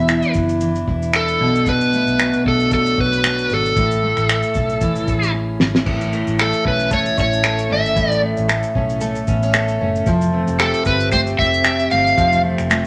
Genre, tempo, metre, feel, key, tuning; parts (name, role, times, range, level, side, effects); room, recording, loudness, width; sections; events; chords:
acoustic pop; 114 BPM; 4/4; swing 55% on 16ths; A major; A4 = 441 Hz
overdriven slide guitar; melody; 0.0-12.4 s; A4 to F5; -21 LUFS; equal
picked steel-string acoustic guitar; accompaniment; 0.0-12.9 s; E2 to A4; -22 LUFS; equal
vintage muted fingered electric bass; bass; 0.0-12.8 s; E1 to B1; -26 LUFS; equal
cloth-damped thuddy drum kit; drums; 0.1-12.8 s; crash cymbal, finger snaps, kick drum, shaker, snare drum; -23 LUFS; equal
direct-recorded clean electric guitar; arpeggios; 5.9-12.9 s; E3 to A4; -29 LUFS; equal; tremolo
group handclap; percussion; 10.6-12.8 s; barely audible
wet studio reverb, RT60 0.9 s; -17 LUFS; mono
0.0-5.9 A section; 5.9-12.9 B section
drum fill 5.3-5.9
0.0 E7(no3); 1.4 Bm7; 3.8 Amaj7; 5.9 A; 10.1 Fadd9